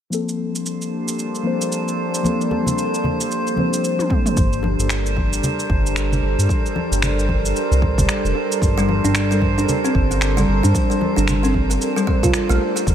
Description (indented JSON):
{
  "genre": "organic downtempo",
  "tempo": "113 BPM",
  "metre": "4/4",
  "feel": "swing 60% on 16ths",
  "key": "G minor",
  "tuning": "A4 = 440 Hz",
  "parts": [
    { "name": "muted felt-like synth keys", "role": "accompaniment", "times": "0.1-4.4 s", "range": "F3 to C5", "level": "-24 LUFS", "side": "left 3 dB", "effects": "chorus, sidechain pumping, low-pass filter, ping-pong delay, shimmer reverb" },
    { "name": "warbly tape-like pad", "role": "sustained chords", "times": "0.6-12.9 s", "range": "Eb3 to Bb4", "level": "-24 LUFS", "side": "right 1 dB", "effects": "chorus, built-in reverb, sidechain pumping, shimmer reverb" },
    { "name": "organic electronic drum kit", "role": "drums", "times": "0.1-12.9 s", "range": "finger snaps, shaker, toms", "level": "-26 LUFS", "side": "equal", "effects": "none" },
    { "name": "drifting glass-harmonics texture", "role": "texture", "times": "0.7-12.9 s", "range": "C5", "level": "-27 LUFS", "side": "right 2 dB", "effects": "chorus, built-in reverb, shimmer reverb" },
    { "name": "congas and bongos", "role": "percussion", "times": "2.2-12.9 s", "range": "none", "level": "-27 LUFS", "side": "left 1 dB", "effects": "none" },
    { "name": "electronic kick drum", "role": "drums", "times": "4.1-12.9 s", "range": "none", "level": "-20 LUFS", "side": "equal", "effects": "none" },
    { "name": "smooth synth bass", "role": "bass", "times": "4.4-12.9 s", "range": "F1 to G2", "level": "-20 LUFS", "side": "equal", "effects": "none" },
    { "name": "kalimba", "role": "arpeggios", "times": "8.8-12.9 s", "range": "G3 to F4", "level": "-20 LUFS", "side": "equal", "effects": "ping-pong delay, shimmer reverb" }
  ],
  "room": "light reverb, digital ambience",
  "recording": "none",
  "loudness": "-17 LUFS",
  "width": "side -9 dB against mid",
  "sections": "0.1-4.4 A section; 4.4-12.9 B section",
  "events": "filter sweep on synth keys 0.1-4.4; drum fill 4.0-4.4",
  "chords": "0.1 Gm11; 4.4 Gmadd9"
}